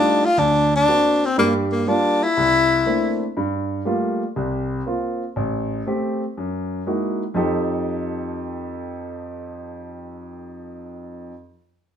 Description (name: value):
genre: jazz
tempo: 120 BPM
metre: 4/4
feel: swing 69% on 8ths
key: F mixolydian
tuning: A4 = 441 Hz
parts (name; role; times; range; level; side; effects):
- mellow tenor saxophone; melody; 0.0-3.2 s; Bb3 to F4; -17 LUFS; left 2 dB; none
- warm concert grand piano; accompaniment; 0.0-11.3 s; A1 to A4; -23 LUFS; right 1 dB; none
room: moderate studio reverb, RT60 0.8 s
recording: minimal, uncompressed stereo recording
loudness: -19 LUFS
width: side -8 dB against mid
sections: 0.0-3.4 A section; 3.4-7.4 B section; 7.4-11.3 C section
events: none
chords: 0.4 Daug7; 1.4 Gm7; 2.4 C13; 3.4 Gm9; 4.4 C7sus4; 5.4 Am7; 6.4 Gb13; 7.4 F9